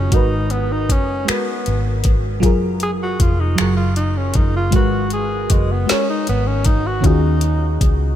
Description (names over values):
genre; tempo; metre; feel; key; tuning
slow six-eight R&B; 52 BPM (dotted quarters); 6/8; straight; G# dorian; A4 = 437 Hz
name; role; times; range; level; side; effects
breathy tenor saxophone; melody; 0.0-7.8 s; G#3 to G#4; -23 LUFS; equal; ping-pong delay
mellow FM electric piano; accompaniment; 0.0-8.2 s; D#3 to C#5; -21 LUFS; equal; chorus, phaser
vintage muted fingered electric bass; bass; 0.0-8.2 s; E#1 to D#2; -20 LUFS; equal; none
smooth R&B drum kit; drums; 0.1-8.0 s; finger snaps, hi-hat, kick drum, snare drum; -18 LUFS; equal; none
room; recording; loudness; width
light reverb; none; -15 LUFS; side -11 dB against mid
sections
0.0-8.2 A section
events
tenor saxophone solo 0.0-8.2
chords
0.1 G#m9; 2.4 F#maj9; 4.7 G#m9; 7.0 D#m11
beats
| 0.12 1.27 | 2.43 3.58 | 4.73 5.89 | 7.04